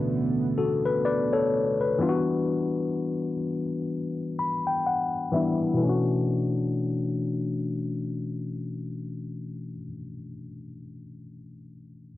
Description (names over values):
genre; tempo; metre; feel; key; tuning
R&B; 63 BPM; 4/4; swing 58% on 16ths; B minor; A4 = 440 Hz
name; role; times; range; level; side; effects
mellow tine electric piano; accompaniment; 0.0-12.1 s; B2 to B5; -26 LUFS; left 2 dB; cassette tape
chorused pulse-width pad; sustained chords; 0.0-2.0 s; D3 to B3; -30 LUFS; right 4 dB; cassette tape
room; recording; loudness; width
moderate booth ambience, RT60 0.2 s; home recording on cassette, low-pass filter; -25 LUFS; side -15 dB against mid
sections
0.0-5.8 A section; 5.8-9.6 B section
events
filter sweep 0.0-5.8; tine electric piano fill 3.9-5.8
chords
0.0 Bm11; 2.0 Em9; 5.8 Bm11